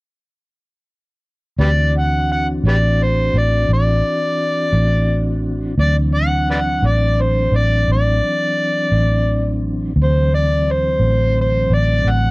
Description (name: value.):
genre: slow blues.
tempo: 57 BPM (dotted quarters).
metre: 12/8.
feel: straight.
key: D mixolydian.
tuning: A4 = 440 Hz.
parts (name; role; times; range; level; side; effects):
overdriven harmonica; melody; 1.6-12.3 s; G4 to F#5; -19 LUFS; equal; none.
mellow tonewheel organ; sustained chords; 1.6-12.3 s; D3 to F#4; -23 LUFS; equal; slow rotary speaker.
vintage muted fingered electric bass; bass; 1.6-12.3 s; A1 to D2; -16 LUFS; equal; none.
room: small room ambience.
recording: dry, close 1970s-style studio recording.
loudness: -14 LUFS.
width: side -23 dB against mid.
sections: 1.6-12.3 A section.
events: none.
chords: 1.6 D9.